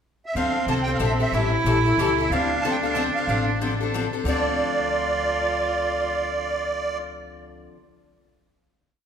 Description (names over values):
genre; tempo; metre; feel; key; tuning
acoustic string swing (jazz manouche); 184 BPM; 3/4; swing 61% on 8ths; D minor; A4 = 439 Hz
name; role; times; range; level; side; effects
musette accordion; melody; 0.3-7.0 s; D5 to A5; -26 LUFS; right 3 dB; none
clear cello; second line; 0.4-7.0 s; C4 to F4; -26 LUFS; right 2 dB; none
picked steel-string acoustic guitar; accompaniment; 0.4-7.8 s; D3 to A4; -27 LUFS; left 6 dB; none
upright bass; bass; 0.4-7.7 s; A1 to D2; -28 LUFS; equal; none
room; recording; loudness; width
wet scoring stage reverb, RT60 1.8 s; recorded in a church or concert hall; -21 LUFS; side -8 dB against mid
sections
0.0-0.3 pickup bar; 0.3-4.3 A section; 4.3-6.2 final chord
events
none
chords
0.3 Dm7; 1.3 A7; 2.3 Dm7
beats
0.02 | 0.35 0.67 1.00 | 1.32 1.65 1.98 | 2.30 2.63 2.95 | 3.28 3.60 3.93 | 4.26 4.58 4.91 | 5.23 5.56 5.88